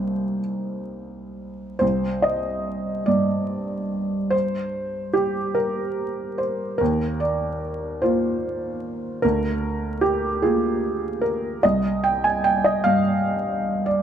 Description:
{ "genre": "neoclassical minimalist piano", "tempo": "49 BPM (dotted quarters)", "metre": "6/8", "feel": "uneven beats, rubato", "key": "C minor", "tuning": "A4 = 440 Hz", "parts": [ { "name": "felt-muted upright piano", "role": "solo", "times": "0.0-14.0 s", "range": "C2 to Ab5", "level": "-21 LUFS", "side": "right 1 dB", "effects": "none" } ], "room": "moderate recital hall reverb, RT60 1.6 s", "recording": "close, detailed microphones, vinyl crackle", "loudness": "-21 LUFS", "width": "side -9 dB against mid", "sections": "0.0-1.8 A section; 1.8-14.0 B section", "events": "none", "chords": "0.0 Cm7; 1.8 Cm; 6.8 Ebsus2; 9.2 Bb/D; 11.6 C5" }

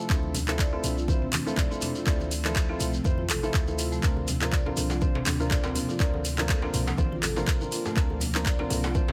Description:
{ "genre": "afro house", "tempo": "122 BPM", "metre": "4/4", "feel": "swing 55% on 16ths", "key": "unclear", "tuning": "A4 = 436 Hz", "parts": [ { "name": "ethereal airy pad", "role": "sustained chords", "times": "0.0-9.1 s", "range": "C3 to D4", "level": "-39 LUFS", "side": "equal", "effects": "ensemble chorus, built-in reverb, sidechain pumping" }, { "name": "marimba with soft mallets", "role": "arpeggios", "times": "0.0-9.1 s", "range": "A3 to D5", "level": "-37 LUFS", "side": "equal", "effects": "sidechain pumping, digital delay" }, { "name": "felt-muted upright piano", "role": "stabs", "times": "0.0-9.1 s", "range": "C4 to C5", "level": "-36 LUFS", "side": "equal", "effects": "sidechain pumping, digital delay" }, { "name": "warm 808-style bass", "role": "bass", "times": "0.1-9.1 s", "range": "A1 to F2", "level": "-34 LUFS", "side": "equal", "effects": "sidechain pumping" }, { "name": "afro-pop drum kit", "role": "drums", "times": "0.1-9.1 s", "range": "handclaps, hi-hat, toms", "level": "-34 LUFS", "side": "equal", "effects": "small room ambience" }, { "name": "electronic kick drum", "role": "drums", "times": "0.1-9.1 s", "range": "none", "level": "-28 LUFS", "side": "equal", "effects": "small room ambience" }, { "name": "shekere", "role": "percussion", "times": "0.1-9.1 s", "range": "none", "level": "-41 LUFS", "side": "equal", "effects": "none" }, { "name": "congas", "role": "percussion", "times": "0.2-9.1 s", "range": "none", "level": "-39 LUFS", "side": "equal", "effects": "none" }, { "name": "djembe", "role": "percussion", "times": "4.2-9.1 s", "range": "none", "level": "-40 LUFS", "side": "equal", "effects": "none" } ], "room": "studio reverb", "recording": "none", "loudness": "-27 LUFS", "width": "mono", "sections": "0.0-9.1 A section", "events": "none", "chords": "0.0 Dm7; 4.0 Bbadd9" }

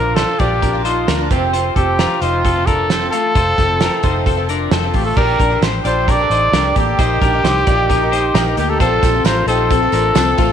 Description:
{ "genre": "jangly indie pop", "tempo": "132 BPM", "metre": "4/4", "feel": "straight", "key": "unclear", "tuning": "A4 = 440 Hz", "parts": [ { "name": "warm trumpet", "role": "melody", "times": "0.0-10.5 s", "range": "F4 to D5", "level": "-17 LUFS", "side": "equal", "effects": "slapback echo" }, { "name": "picked twelve-string acoustic guitar", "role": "accompaniment", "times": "0.0-10.5 s", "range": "F2 to A4", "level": "-23 LUFS", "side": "right 12 dB", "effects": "none" }, { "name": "twelve-string electric guitar", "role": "arpeggios", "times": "0.0-10.5 s", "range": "A3 to D5", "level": "-20 LUFS", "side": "left 12 dB", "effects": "slapback echo" }, { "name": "vintage muted fingered electric bass", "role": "bass", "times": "0.0-10.5 s", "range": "F1 to D2", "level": "-20 LUFS", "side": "equal", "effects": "none" }, { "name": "loose indie drum kit", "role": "drums", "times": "0.2-10.5 s", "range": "crash cymbal, hi-hat, kick drum, snare drum", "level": "-19 LUFS", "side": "right 2 dB", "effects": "none" }, { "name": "dark upright piano", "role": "accompaniment", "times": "8.8-10.5 s", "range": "C4 to C5", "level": "-22 LUFS", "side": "left 12 dB", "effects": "none" }, { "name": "tambourine", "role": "percussion", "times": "8.8-10.5 s", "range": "none", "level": "-35 LUFS", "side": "right 16 dB", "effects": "none" } ], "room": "light reverb, small room ambience", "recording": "1960s-style stereo with parts hard left and right", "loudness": "-13 LUFS", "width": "side -8 dB against mid", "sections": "0.0-5.2 A section; 5.2-10.5 B section", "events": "none", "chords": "0.0 Bb; 1.3 F; 5.2 Gmadd9; 7.0 Eb/Bb; 8.8 F" }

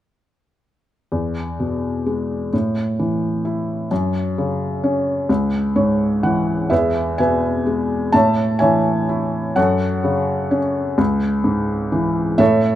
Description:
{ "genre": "classical, lyrical solo piano", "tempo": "42 BPM (dotted quarters)", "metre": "6/8", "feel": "rubato", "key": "E major", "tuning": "A4 = 443 Hz", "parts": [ { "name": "felt-muted upright piano", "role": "solo", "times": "1.1-12.8 s", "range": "C#2 to A5", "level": "-17 LUFS", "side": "equal", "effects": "none" } ], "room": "light reverb", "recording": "close, detailed microphones", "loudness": "-17 LUFS", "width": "side -12 dB against mid", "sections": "1.1-6.7 A section; 6.7-12.8 B section", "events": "felt piano fill 5.3-6.7", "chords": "1.1 E; 2.5 A5; 3.9 F#5; 5.3 C#m; 6.7 E; 8.1 A; 9.6 F#m; 11.0 C#m" }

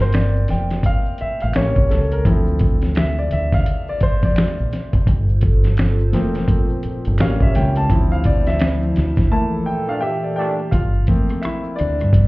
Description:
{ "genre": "R&B, neo-soul", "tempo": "85 BPM", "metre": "4/4", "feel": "swing 61% on 16ths", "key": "G dorian", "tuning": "A4 = 440 Hz", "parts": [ { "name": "clear concert grand piano", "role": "accompaniment", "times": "0.0-12.3 s", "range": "F3 to A5", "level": "-22 LUFS", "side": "left 1 dB", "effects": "none" }, { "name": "deep dub fingered electric bass", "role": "bass", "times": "0.0-12.3 s", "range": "F1 to G2", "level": "-18 LUFS", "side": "equal", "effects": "none" }, { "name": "dusty soul sampler-style drum kit", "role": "drums", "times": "0.0-12.3 s", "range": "hi-hat, kick drum, rim click, snare drum", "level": "-18 LUFS", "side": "equal", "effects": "none" }, { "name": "finger snaps and tube shaker", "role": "percussion", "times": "0.1-12.3 s", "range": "none", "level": "-40 LUFS", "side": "right 3 dB", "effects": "none" }, { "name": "hollow soft pad", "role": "sustained chords", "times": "5.1-10.7 s", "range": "Bb2 to C#5", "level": "-26 LUFS", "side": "equal", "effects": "chorus" }, { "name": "bright trombone section", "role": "stabs", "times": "9.9-10.6 s", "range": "Bb2 to D4", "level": "-25 LUFS", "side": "right 1 dB", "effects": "none" } ], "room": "little or no reverb", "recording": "heard muffled through a wall, club reverb, EQ", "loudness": "-16 LUFS", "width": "side -21 dB against mid", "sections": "0.0-10.7 A section; 10.7-12.3 B section", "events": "grand piano solo 0.0-10.7, 10.7-12.3; band accent 7.9-10.7; break 9.3-10.7", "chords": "0.0 Gm11; 1.5 A7b9; 2.3 Dm9; 5.1 Gm11; 7.2 A7b9; 7.9 Dm9; 9.3 Gm69; 10.7 Gm11" }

